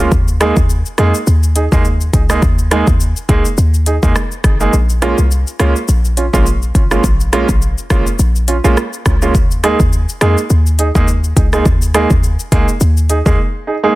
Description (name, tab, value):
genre	dancehall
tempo	104 BPM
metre	4/4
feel	swing 56% on 16ths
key	unclear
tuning	A4 = 440 Hz
part	clear concert grand piano	accompaniment	0.0-13.9 s	Ab3 to Ab4	-17 LUFS	right 3 dB	sidechain pumping
part	short 808-style bass	bass	0.0-13.4 s	Ab1 to F2	-13 LUFS	equal	none
part	afro-pop drum kit	drums	0.1-13.4 s	hi-hat, kick drum, rim click, shaker	-15 LUFS	equal	soft clipping on snare
room	digital ambience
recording	dense, heavily limited modern master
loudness	-11 LUFS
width	side -18 dB against mid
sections	0.0-14.0 A section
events	kick muted 4.7-5.3; break 13.4-14.0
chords	0.1 Ebsus4; 4.7 Bbm7; 9.3 Ebsus4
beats	| 0.12 0.69 1.27 1.85 | 2.42 3.00 3.58 4.16 | 4.73 5.31 5.89 6.46 | 7.04 7.62 8.19 8.77 | 9.35 9.92 10.50 11.08 | 11.65 12.23 12.81 13.39